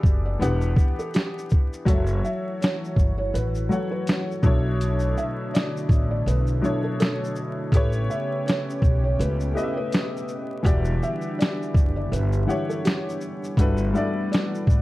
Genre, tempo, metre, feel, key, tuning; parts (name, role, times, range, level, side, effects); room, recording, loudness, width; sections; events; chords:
lo-fi hip hop; 82 BPM; 4/4; swing 55% on 16ths; E dorian; A4 = 442 Hz
felt-muted upright piano; melody; 0.0-14.8 s; G4 to E5; -32 LUFS; equal; plate reverb
warm upright piano; accompaniment; 0.0-14.8 s; B2 to F#5; -28 LUFS; left 2 dB
upright bass; bass; 0.0-14.8 s; E1 to C#2; -24 LUFS; equal
boom bap sampler-style drum kit; drums; 0.0-14.8 s; hi-hat, kick drum, shaker, snare drum; -21 LUFS; equal
lush unison pad; sustained chords; 1.9-14.8 s; C#3 to G4; -32 LUFS; right 1 dB; chorus
light reverb; dark, warm production, vinyl crackle; -21 LUFS; side -18 dB against mid
0.0-1.9 A section; 1.9-13.6 B section; 13.6-14.8 A section
0.0 Em7; 1.9 F#m7; 4.4 Bm11; 7.7 A9; 10.7 Em7; 13.6 Gmaj13